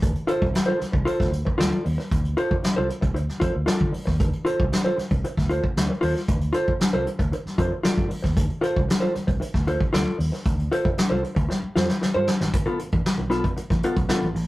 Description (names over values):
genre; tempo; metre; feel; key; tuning
funk; 115 BPM; 4/4; straight; D dorian; A4 = 444 Hz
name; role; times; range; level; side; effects
fingered electric bass; bass; 0.0-14.5 s; G1 to D3; -27 LUFS; equal; none
vintage brush drum kit; drums; 0.0-14.5 s; hi-hat, kick drum, snare drum; -24 LUFS; equal; none
vintage hollow-body jazz guitar; accompaniment; 0.3-14.4 s; B3 to D5; -25 LUFS; equal; none
room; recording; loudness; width
light reverb; rough rehearsal-room recording, tube saturation; -21 LUFS; side -18 dB against mid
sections
0.0-12.5 A section; 12.5-14.5 B section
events
drum fill 11.5-12.5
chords
0.0 Dm7; 12.5 G9 (rootless)